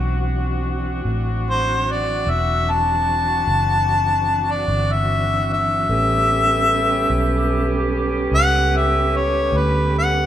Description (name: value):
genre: blues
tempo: 50 BPM (dotted quarters)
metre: 12/8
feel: straight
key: unclear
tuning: A4 = 440 Hz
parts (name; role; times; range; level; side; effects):
- mellow horn section; sustained chords; 0.0-10.3 s; B3 to G4; -27 LUFS; right 1 dB; none
- mellow tonewheel organ; sustained chords; 0.0-10.3 s; E3 to A4; -26 LUFS; right 2 dB; slow rotary speaker, chorus vibrato
- vintage muted fingered electric bass; bass; 0.0-10.3 s; E1 to D2; -22 LUFS; equal; none
- mellow harmonica; melody; 1.5-10.3 s; B4 to A5; -19 LUFS; left 2 dB; overdrive
room: moderate stone room reverb, RT60 1.2 s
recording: band playing live in one room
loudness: -16 LUFS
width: side -11 dB against mid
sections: 0.0-10.3 A section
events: harmonica solo 0.0-10.3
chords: 0.0 D9; 5.9 A9